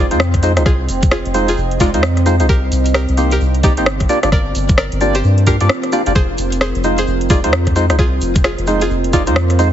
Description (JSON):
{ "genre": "UK garage, two-step garage", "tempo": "131 BPM", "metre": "4/4", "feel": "swing 61% on 16ths", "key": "F dorian", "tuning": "A4 = 439 Hz", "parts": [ { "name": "string-like resonator pluck", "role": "melody", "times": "0.0-9.7 s", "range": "Ab3 to D5", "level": "-23 LUFS", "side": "equal", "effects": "chorus, ping-pong delay" }, { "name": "percussive organ stab", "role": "stabs", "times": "0.0-9.7 s", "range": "Ab3 to F5", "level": "-18 LUFS", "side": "equal", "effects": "wide subtle chorus" }, { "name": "soft dub sub bass", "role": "bass", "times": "0.0-9.7 s", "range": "F1 to G2", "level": "-16 LUFS", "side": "equal", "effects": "none" }, { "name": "deep dark ambient pad", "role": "texture", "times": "0.0-9.7 s", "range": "C4 to Eb5", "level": "-22 LUFS", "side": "right 1 dB", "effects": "chorus, built-in reverb, sidechain pumping" }, { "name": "garage drum kit", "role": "drums", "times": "0.1-9.7 s", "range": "hi-hat, rim click", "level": "-20 LUFS", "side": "equal", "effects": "none" }, { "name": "egg shaker", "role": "percussion", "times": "0.1-9.7 s", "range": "none", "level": "-34 LUFS", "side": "right 3 dB", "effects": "none" }, { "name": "electronic kick drum", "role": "drums", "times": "0.3-9.2 s", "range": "none", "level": "-14 LUFS", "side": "equal", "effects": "none" } ], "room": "light reverb", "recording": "heavily compressed radio sound, multiband compression, nothing above 7.8 kHz", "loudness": "-12 LUFS", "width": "side -10 dB against mid", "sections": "0.0-9.7 A section", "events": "none", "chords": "0.0 Fm7; 2.5 Cm7; 4.1 Gm7; 6.2 Fm7" }